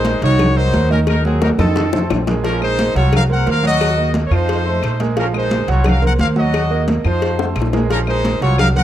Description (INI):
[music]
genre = latin, salsa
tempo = 176 BPM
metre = 4/4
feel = straight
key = Bb minor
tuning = A4 = 440 Hz
[part]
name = brilliant trumpet section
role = melody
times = 0.0-8.8 s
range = C4 to Gb5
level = -20 LUFS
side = left 2 dB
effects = none
[part]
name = clear grand piano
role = accompaniment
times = 0.0-8.8 s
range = Eb3 to Gb5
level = -22 LUFS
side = right 7 dB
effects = none
[part]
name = upright bass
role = bass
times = 0.0-8.8 s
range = Bb1 to F2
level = -18 LUFS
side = equal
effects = none
[part]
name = congas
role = percussion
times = 0.0-8.8 s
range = none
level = -21 LUFS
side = equal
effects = none
[part]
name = cowbell and bongos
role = percussion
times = 0.1-8.8 s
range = none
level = -24 LUFS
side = left 8 dB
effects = none
[part]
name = claves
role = percussion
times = 0.4-8.8 s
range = none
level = -33 LUFS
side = left 14 dB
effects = none
[sound]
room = studio reverb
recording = dry, close 1970s-style studio recording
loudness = -14 LUFS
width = side -11 dB against mid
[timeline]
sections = 0.0-2.4 A section; 2.4-8.8 A section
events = drum fill 1.1-2.4, 7.4-7.9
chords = 0.4 Cm7b5; 1.1 Ebm; 1.8 F7; 2.4 Bbm7; 3.1 Cm7b5; 3.8 Ebm; 4.5 F7; 5.2 Bbm7; 5.9 Cm7b5; 6.5 Ebm; 7.2 F7; 7.9 Bbm7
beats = 0.06 0.40 0.74 | 1.08 1.42 1.76 2.10 | 2.44 2.78 3.12 3.47 | 3.81 4.15 4.49 4.83 | 5.17 5.51 5.86 6.20 | 6.54 6.88 7.22 7.56 | 7.91 8.25 8.59